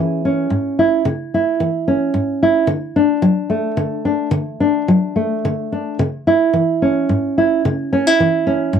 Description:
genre	folk, solo fingerstyle acoustic guitar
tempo	110 BPM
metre	3/4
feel	rubato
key	unclear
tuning	A4 = 440 Hz
part	nylon-string guitar	solo	0.0-8.8 s	G#2 to G#4	-15 LUFS	right 1 dB	none
room	little or no reverb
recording	dry, close 1970s-style studio recording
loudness	-15 LUFS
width	side -8 dB against mid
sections	0.0-8.8 A section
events	none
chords	0.0 C#m; 2.7 D; 6.0 C#m

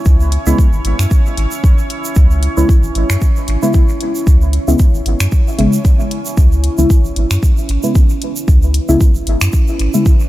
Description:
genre	dub techno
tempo	114 BPM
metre	4/4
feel	swing 55% on 16ths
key	C# minor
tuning	A4 = 445 Hz
part	deep dark ambient pad	sustained chords	0.0-10.3 s	C#4 to C#5	-24 LUFS	right 1 dB	chorus, built-in reverb, sidechain pumping
part	soft dub sub bass	bass	0.1-9.9 s	G#1 to F#2	-14 LUFS	equal	tube saturation, sidechain pumping
part	electronic kick drum	drums	0.1-10.2 s	none	-11 LUFS	equal	studio reverb
part	tube shaker	percussion	0.1-10.3 s	none	-28 LUFS	right 6 dB	none
part	deep house drum kit	drums	0.3-9.9 s	finger snaps, hi-hat	-23 LUFS	left 1 dB	studio reverb, dub echo
part	deep mellow chord stab	stabs	0.5-10.1 s	C#3 to E4	-18 LUFS	left 1 dB	chorus, phaser, sidechain pumping, dub echo
room	digital ambience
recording	none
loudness	-11 LUFS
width	side -16 dB against mid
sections	0.0-10.3 A section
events	filter sweep on synth stab 0.0-10.3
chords	0.0 C#m7

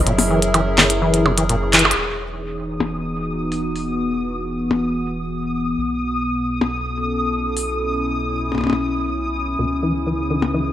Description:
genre	IDM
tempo	126 BPM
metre	4/4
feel	straight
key	E major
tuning	A4 = 437 Hz
part	warbly nostalgic lead	melody	0.0-1.5 s	E5	-28 LUFS	equal	lush chorus, dub echo
part	hollow soft pad	sustained chords	0.0-10.7 s	B2 to B4	-23 LUFS	left 1 dB	chorus, vintage 12-bit sampler grit
part	rubbery square bass	bass	0.0-10.7 s	E1 to C#2	-27 LUFS	right 1 dB	tube saturation
part	flickering grainy texture	texture	0.1-10.7 s	C#5 to D#6	-28 LUFS	left 1 dB	built-in reverb
part	deep acid bass	arpeggios	0.1-1.8, 9.6-10.6 s	A#2 to E3	-22 LUFS	left 1 dB	analog chorus, dub echo
part	glitchy drum kit	drums	0.1-10.5 s	handclaps, hi-hat, percussion blips	-17 LUFS	left 1 dB	low-pass filter on hats, low-pass filter on perc, low-pass filter on snare
room	wet plate reverb, RT60 1.3 s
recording	rough home demo mix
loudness	-18 LUFS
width	side -12 dB against mid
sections	0.0-2.0 A section; 2.0-10.7 B section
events	drum fill 1.7; band accent 1.7; filter sweep on drum 2.0-10.7; filter sweep on analog synth pad 2.0-10.7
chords	0.0 F#9; 2.0 Emaj9; 5.8 B9sus4; 9.6 C#m9

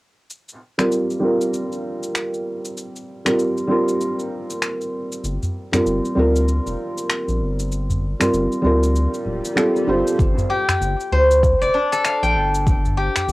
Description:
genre	organic downtempo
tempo	97 BPM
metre	4/4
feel	swing 60% on 16ths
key	G minor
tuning	A4 = 435 Hz
part	electronic cabasa and finger snaps	drums	0.3-13.3 s	none	-25 LUFS	equal	overdrive, small room ambience
part	felt-muted upright piano	accompaniment	0.8-10.5 s	G3 to C5	-20 LUFS	right 1 dB	sidechain pumping, low-pass filter, cassette tape, analog delay
part	round analog bass	bass	5.2-13.3 s	D1 to D2	-21 LUFS	equal	none
part	udu	percussion	5.4-13.3 s	none	-25 LUFS	equal	none
part	swell	sound effects	9.2-10.2 s	none	-28 LUFS	equal	none
part	electronic kick drum	drums	10.2-12.8 s	none	-19 LUFS	equal	overdrive, small room ambience
part	steel-string zither	arpeggios	10.5-13.3 s	D4 to G5	-18 LUFS	left 1 dB	cassette tape, analog delay
room	wet booth ambience, RT60 0.2 s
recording	home recording on cassette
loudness	-18 LUFS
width	side -20 dB against mid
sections	0.3-10.2 A section; 10.2-13.3 B section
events	filter sweep on felt piano 0.3-10.2; swell 9.2-10.2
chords	0.3 Gm7; 10.2 G7(no3)

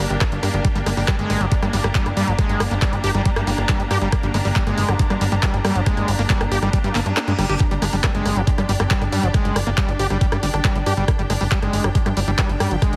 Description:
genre	psychedelic trance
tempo	138 BPM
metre	4/4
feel	straight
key	G phrygian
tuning	A4 = 440 Hz
part	swarming drone	sustained chords	0.0-13.0 s	Bb3 to G5	-32 LUFS	equal	built-in reverb, sidechain pumping
part	plucky analog bass	bass	0.0-13.0 s	G1 to G2	-24 LUFS	equal	none
part	bright studio string section	texture	0.0-13.0 s	D4 to Bb5	-32 LUFS	equal	sidechain pumping
part	drum and bass drum kit	drums	0.1-13.0 s	handclaps, hi-hat, rim click	-28 LUFS	equal	overdrive, studio ambience
part	electronic kick drum	drums	0.2-12.9 s	none	-22 LUFS	equal	overdrive, studio ambience
part	screaming distorted acid line	riff	0.6-13.0 s	F3 to G4	-27 LUFS	equal	distortion, chorus, sidechain pumping, dub echo
part	reverse cymbal	sound effects	7.0-7.6 s	none	-36 LUFS	equal	none
part	metallic wobble bass	second line	8.8-11.5 s	C4 to D4	-35 LUFS	equal	none
room	light reverb, digital ambience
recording	heavily compressed radio sound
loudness	-20 LUFS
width	mono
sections	0.0-13.0 A section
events	reverse cymbal 7.0-7.6; kick drops out 7.2-7.6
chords	0.0 G5

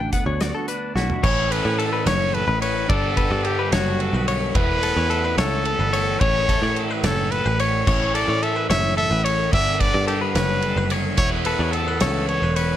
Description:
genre	math rock and midwest emo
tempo	72 BPM (dotted quarters)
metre	6/8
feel	straight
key	unclear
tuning	A4 = 437 Hz
part	twelve-string electric guitar	accompaniment	0.0-1.2 s	D2 to F#4	-29 LUFS	right 6 dB	ensemble chorus
part	direct-recorded clean electric guitar	arpeggios	0.0-12.8 s	F#4 to G5	-27 LUFS	left 6 dB	none
part	picked electric bass	bass	0.0-12.8 s	E1 to A2	-24 LUFS	equal	none
part	loose indie drum kit	drums	0.1-12.7 s	crash cymbal, hi-hat, kick drum, ride cymbal, snare drum, toms	-25 LUFS	right 1 dB	none
part	clear trumpet	melody	1.2-12.8 s	F#4 to E5	-24 LUFS	equal	slapback echo
part	overdriven semi-hollow guitar	riff	1.2-12.8 s	G2 to E4	-27 LUFS	equal	none
room	little or no reverb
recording	none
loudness	-18 LUFS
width	side -11 dB against mid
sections	0.0-1.2 A section; 1.2-12.8 B section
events	drum fill 1.0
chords	0.0 D69; 1.2 A; 2.9 Gmaj7; 4.6 Esus4; 6.2 A; 9.5 Gmaj7; 11.2 Esus4

